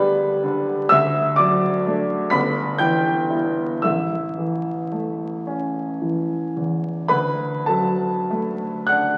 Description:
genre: classical, romantic nocturne for solo piano.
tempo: 32-44 BPM (dotted quarters).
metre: 12/8.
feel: rubato.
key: D major.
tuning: A4 = 440 Hz.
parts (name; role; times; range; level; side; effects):
warm grand piano; solo; 0.0-9.2 s; G1 to B6; -21 LUFS; equal; none.
room: wet recital hall reverb, RT60 1.6 s.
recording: very old 78 rpm record, vinyl crackle.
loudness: -21 LUFS.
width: mono.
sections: 0.0-9.2 A section.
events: none.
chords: 0.0 G/D; 0.9 D; 2.3 Em/G; 3.8 A; 7.1 D.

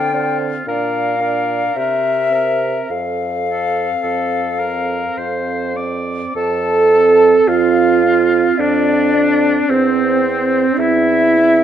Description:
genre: classical, slow romantic movement for wind quintet.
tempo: 48-56 BPM.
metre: 3/4.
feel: rubato.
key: F major.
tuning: A4 = 440 Hz.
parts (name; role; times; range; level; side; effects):
silver concert flute; melody; 0.0-11.6 s; C5 to A5; -20 LUFS; left 4 dB; none.
clear oboe; second line; 0.0-11.6 s; C4 to D5; -22 LUFS; left 2 dB; none.
clear clarinet; accompaniment; 0.0-11.6 s; C4 to D5; -23 LUFS; right 10 dB; none.
mellow French horn; accompaniment; 0.0-11.6 s; C4 to A4; -16 LUFS; right 2 dB; none.
mellow bassoon; bass; 0.0-11.6 s; E2 to D3; -22 LUFS; right 2 dB; none.
room: moderate recital hall reverb, RT60 1.6 s.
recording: nothing above 10.9 kHz.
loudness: -13 LUFS.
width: side -10 dB against mid.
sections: 0.0-6.4 A section; 6.4-11.6 A section.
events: none.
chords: 0.0 Dm7; 0.7 Bb; 1.8 C7; 2.9 F; 9.7 C/E.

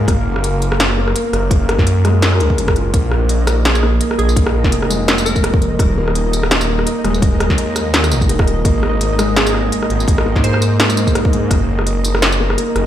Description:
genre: half-time drum and bass.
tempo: 168 BPM.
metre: 4/4.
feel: swing 56% on 16ths, half-time.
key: unclear.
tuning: A4 = 439 Hz.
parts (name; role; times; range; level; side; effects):
felt-muted upright piano; arpeggios; 0.0-12.9 s; Ab3 to Bb4; -20 LUFS; left 1 dB; ping-pong delay.
phased detuned saw bass; bass; 0.0-12.9 s; Eb1 to Ab2; -17 LUFS; equal; phaser.
pulsing gated texture; texture; 0.0-12.9 s; Bb3 to Eb5; -26 LUFS; equal; chorus, built-in reverb.
electronic kick drum; drums; 0.1-11.6 s; none; -15 LUFS; equal; none.
industrial drum kit; drums; 0.1-12.8 s; hi-hat, rim click, snare drum, tambourine; -18 LUFS; equal; none.
glassy wavetable pluck; melody; 3.7-5.6, 9.4-10.6 s; Ab4 to C5; -25 LUFS; right 2 dB; chorus, tape echo.
room: light reverb.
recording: played on a big sound system in a bare room, large studio reverb.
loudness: -12 LUFS.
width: side -11 dB against mid.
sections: 0.0-12.9 A section.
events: none.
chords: 0.1 Gb; 2.9 Bb5; 5.8 Eb5; 8.7 Ab5; 11.5 Gb.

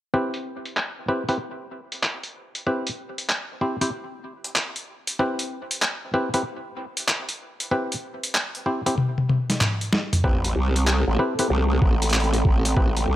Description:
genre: glitch hop.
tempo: 95 BPM.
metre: 4/4.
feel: swing 64% on 16ths.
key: unclear.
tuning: A4 = 440 Hz.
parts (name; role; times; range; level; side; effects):
muted clav; stabs; 0.1-13.0 s; C4 to C5; -27 LUFS; equal; sidechain pumping, low-pass filter, dub echo.
boom bap sampler-style drum kit; drums; 0.3-13.1 s; handclaps, hi-hat, snare drum, toms; -24 LUFS; equal; overdrive, low-pass filter on hats, low-pass filter on snare, low-pass filter on toms.
growl bass; bass; 10.2-13.2 s; A1 to C2; -21 LUFS; equal; chorus, tube saturation.
electronic kick drum; drums; 10.2-12.9 s; none; -19 LUFS; equal; overdrive.
airy breathy pad; texture; 10.5-13.2 s; C4 to G5; -28 LUFS; right 1 dB; chorus, sidechain pumping.
room: light reverb, digital ambience.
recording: none.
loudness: -22 LUFS.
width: side -14 dB against mid.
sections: 0.1-10.2 A section; 10.2-13.2 B section.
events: filter sweep on drum 0.1-10.2; drum fill 9.0-10.2.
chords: 0.1 Cmaj7; 10.2 Am7.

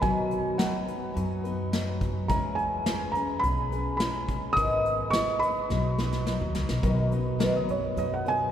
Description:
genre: acoustic folk duo or small band.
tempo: 106 BPM.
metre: 4/4.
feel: straight.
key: B major.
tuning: A4 = 445 Hz.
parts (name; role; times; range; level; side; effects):
felt-muted upright piano; melody; 0.0-8.5 s; B4 to D#6; -29 LUFS; right 2 dB; none.
picked steel-string acoustic guitar; accompaniment; 0.0-8.5 s; G#2 to B4; -30 LUFS; left 2 dB; none.
upright bass; bass; 0.0-8.5 s; G#1 to F#2; -32 LUFS; equal; none.
soft brush drum kit; drums; 0.0-8.4 s; hi-hat, kick drum, snare drum; -33 LUFS; equal; none.
room: wet cathedral reverb, RT60 5.6 s.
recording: recorded in a church or concert hall.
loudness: -25 LUFS.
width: side -10 dB against mid.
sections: 0.0-6.8 A section; 6.8-8.5 B section.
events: drum fill 5.7-6.8; felt piano solo 6.8-8.5.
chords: 0.0 B; 2.3 E6; 4.6 G#m; 5.7 B.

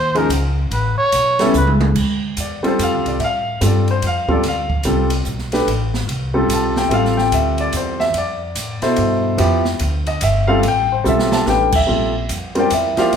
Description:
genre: modal jazz.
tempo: 145 BPM.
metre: 3/4.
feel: swing 64% on 8ths.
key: D dorian.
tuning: A4 = 440 Hz.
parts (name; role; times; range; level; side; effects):
trumpet with cup mute; melody; 0.0-1.7 s; Bb4 to C#5; -18 LUFS; right 1 dB; none.
upright bass; bass; 0.0-13.2 s; G1 to A2; -21 LUFS; left 1 dB; none.
warm concert grand piano; accompaniment; 0.1-13.1 s; B2 to A5; -17 LUFS; left 1 dB; none.
open jazz drum kit; drums; 0.2-13.2 s; crash cymbal, hi-hat, kick drum, ride cymbal, snare drum, toms; -24 LUFS; right 2 dB; none.
room: wet large studio reverb, RT60 1.3 s.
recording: band playing live in one room.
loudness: -15 LUFS.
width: side -7 dB against mid.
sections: 0.0-1.9 A section; 1.9-11.9 A section; 11.9-13.2 A section.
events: muted trumpet solo 0.0-1.9; drum fill 1.5-1.9, 11.1-11.5.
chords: 0.0 Ebsus2; 0.7 A; 1.9 Dm9; 11.9 Gm11.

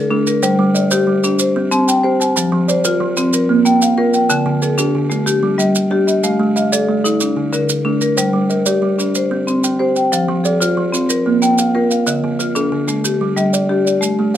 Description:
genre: southern african traditional, mbira-style interlocking cycle.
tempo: 124 BPM (dotted quarters).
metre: 12/8.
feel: straight.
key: G equiheptatonic.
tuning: A4 = 436 Hz.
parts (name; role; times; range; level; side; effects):
marimba with medium hard mallets; arpeggios; 0.0-14.4 s; D3 to A5-29c; -15 LUFS; left 3 dB; none.
buzzing kalimba; arpeggios; 0.1-14.4 s; D3 to Bb5+43c; -18 LUFS; right 5 dB; none.
maracas; percussion; 0.3-14.2 s; none; -21 LUFS; right 4 dB; none.
room: little or no reverb.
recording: close, detailed microphones.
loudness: -13 LUFS.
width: side -11 dB against mid.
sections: 0.0-8.2 A section; 8.2-14.4 A section.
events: none.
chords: 0.4 Gm; 1.4 C5; 2.4 F; 3.3 Bb5; 4.3 D5; 5.3 G5; 6.2 A5; 7.2 D5; 8.2 Gm; 9.1 C5; 10.1 F; 11.1 Bb5; 12.1 Dm; 13.0 G5.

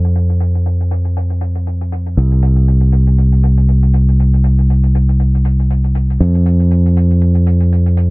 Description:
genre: nu-disco, nu disco.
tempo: 119 BPM.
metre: 4/4.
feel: swing 56% on 16ths.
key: unclear.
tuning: A4 = 440 Hz.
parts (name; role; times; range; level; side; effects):
modern bright fingered electric bass; bass; 0.0-8.1 s; C2 to F2; -10 LUFS; equal; tube saturation.
hi-hat; drums; 0.0-8.1 s; none; -33 LUFS; left 3 dB; low-pass filter on hats, small room ambience, low-pass filter on room.
room: little or no reverb.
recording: low-pass filter.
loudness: -11 LUFS.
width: side -25 dB against mid.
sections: 0.0-8.1 A section.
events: filter sweep on drum 0.0-8.1; filter sweep 0.0-8.1.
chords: none.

